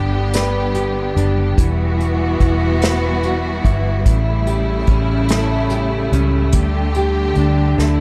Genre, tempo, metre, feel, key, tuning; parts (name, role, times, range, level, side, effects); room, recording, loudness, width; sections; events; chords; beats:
six-eight pop ballad; 48 BPM (dotted quarters); 6/8; straight; G major; A4 = 440 Hz
fingerpicked plugged-in steel-string acoustic guitar; accompaniment; 0.0-8.0 s; A2 to B4; -23 LUFS; equal; double-tracked
clear studio string section; sustained chords; 0.0-8.0 s; C#3 to G4; -24 LUFS; equal
vintage muted fingered electric bass; bass; 0.0-8.0 s; E1 to D2; -21 LUFS; equal
unplugged drum kit; drums; 0.3-8.0 s; hi-hat, kick drum, snare drum; -20 LUFS; equal
light reverb; dark, warm production; -17 LUFS; mono
0.0-8.0 A section
drum fill 7.8
0.0 G; 1.6 Emadd9; 4.1 A7; 6.5 Dsus4
0.33 | 1.57 2.81 | 4.06 5.30 | 6.54 7.78